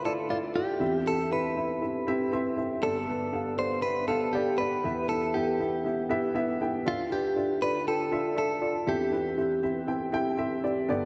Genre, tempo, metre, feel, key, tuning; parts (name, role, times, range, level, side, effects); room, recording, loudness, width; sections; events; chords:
pop; 119 BPM; 4/4; straight; A4 = 440 Hz
direct-recorded clean electric guitar; melody; 0.0-10.4 s; F4 to C5; -32 LUFS; equal
dark upright piano; accompaniment; 0.0-11.1 s; G1 to C6; -31 LUFS; equal; subtle chorus
wet lush hall reverb, RT60 2.8 s; dreamy mix soaked in reverb; -29 LUFS; mono
0.0-10.9 A section
upright piano fill 2.1-2.8
0.0 Dmadd9; 0.8 C/E; 2.8 Gadd9; 4.8 Em; 6.9 Dmadd9; 8.9 C/E